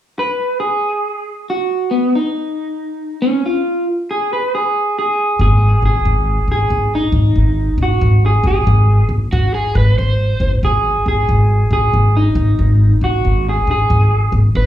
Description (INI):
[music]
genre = electric blues shuffle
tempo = 92 BPM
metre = 4/4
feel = swing 64% on 8ths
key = unclear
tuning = A4 = 439 Hz
[part]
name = electric guitar through a small old amp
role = melody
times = 0.2-14.3 s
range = Cb4 to Cb5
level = -17 LUFS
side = right 1 dB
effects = slapback echo
[part]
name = upright bass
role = bass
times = 5.4-14.7 s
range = Ab1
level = -13 LUFS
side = equal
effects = none
[part]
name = overdriven slide guitar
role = second line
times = 9.3-10.5, 14.6-14.7 s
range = Gb4 to C5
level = -20 LUFS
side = right 2 dB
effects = slapback echo
[sound]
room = little or no reverb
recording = live gig heard through the venue's PA, club reverb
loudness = -13 LUFS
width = side -12 dB against mid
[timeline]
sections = 0.2-5.4 A section; 5.4-14.7 B section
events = none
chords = none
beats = | 0.16 0.81 1.47 2.12 | 2.78 3.43 4.09 4.74 | 5.39 6.05 6.70 7.36 | 8.01 8.66 9.32 9.97 | 10.63 11.28 11.94 12.59 | 13.24 13.90 14.55